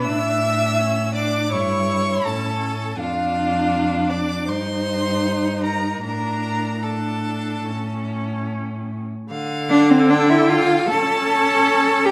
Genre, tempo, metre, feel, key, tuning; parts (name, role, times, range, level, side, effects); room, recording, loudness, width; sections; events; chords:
classical, slow romantic movement for string quartet; 72-83 BPM; 4/4; rubato; D minor; A4 = 443 Hz
rich violin; melody; 0.0-12.1 s; C5 to E6; -29 LUFS; equal
rich violin; second line; 0.0-12.1 s; F4 to Bb5; -29 LUFS; equal
rich viola; accompaniment; 0.0-12.1 s; D3 to E4; -26 LUFS; equal
rich cello; bass; 0.0-12.1 s; F2 to A4; -23 LUFS; equal
wet recital hall reverb, RT60 1.2 s; -20 LUFS; mono
0.0-9.3 A section; 9.3-12.1 B section
0.0 A; 1.5 A7/G; 3.0 Dm/F; 4.5 Eb/G; 6.0 D5/A; 7.7 A; 9.3 Dm; 10.9 A/C#